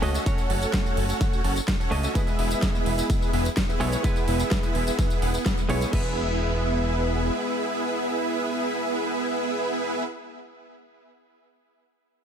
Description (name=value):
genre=EDM, festival progressive house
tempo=127 BPM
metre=4/4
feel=straight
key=E major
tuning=A4 = 440 Hz
part: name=direct-recorded clean electric guitar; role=accompaniment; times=0.0-10.0 s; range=G#3 to D#5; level=-32 LUFS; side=right 3 dB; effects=spring reverb, sidechain pumping, tape echo
part: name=supersaw chords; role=riff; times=0.0-10.0 s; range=B3 to G#5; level=-27 LUFS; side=right 1 dB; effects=wide subtle chorus, sidechain pumping, tape echo
part: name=fat analog bass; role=bass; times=0.0-7.3 s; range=E1 to C#2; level=-27 LUFS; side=equal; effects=sidechain pumping
part: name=big-room dance drum kit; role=drums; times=0.0-6.0 s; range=crash cymbal, hi-hat, ride cymbal, snare drum, tambourine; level=-32 LUFS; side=equal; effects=none
part: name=electronic kick drum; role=drums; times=0.3-6.0 s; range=none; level=-25 LUFS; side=equal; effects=none
room=digital ambience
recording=none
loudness=-22 LUFS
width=side -8 dB against mid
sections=0.0-5.9 A section; 5.9-9.7 B section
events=drop 0.0-5.9; band accent 5.5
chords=0.0 F#m; 2.2 E